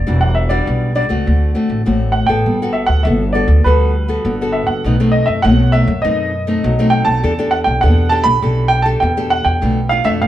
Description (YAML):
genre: samba and choro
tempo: 101 BPM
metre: 4/4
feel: straight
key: G major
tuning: A4 = 440 Hz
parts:
  - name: warm baby grand piano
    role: melody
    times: 0.0-10.3 s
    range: B4 to B5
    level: -17 LUFS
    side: right 1 dB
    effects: none
  - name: nylon-string guitar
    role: accompaniment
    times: 0.0-10.3 s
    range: A2 to A4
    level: -19 LUFS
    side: left 2 dB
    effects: none
  - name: upright bass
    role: bass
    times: 0.0-10.3 s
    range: E1 to F#2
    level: -15 LUFS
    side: equal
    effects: none
room: moderate studio reverb, RT60 0.9 s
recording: band playing live in one room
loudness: -12 LUFS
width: side -12 dB against mid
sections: 0.0-2.5 A section; 2.5-10.3 B section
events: none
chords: 0.1 Em9; 1.3 D7; 2.5 Gmaj9; 4.8 B7b9; 7.2 Em7; 9.6 Bm7b5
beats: | 0.07 0.67 1.26 1.86 | 2.46 3.05 3.65 4.25 | 4.84 5.44 6.04 6.63 | 7.23 7.83 8.42 9.02 | 9.62 10.21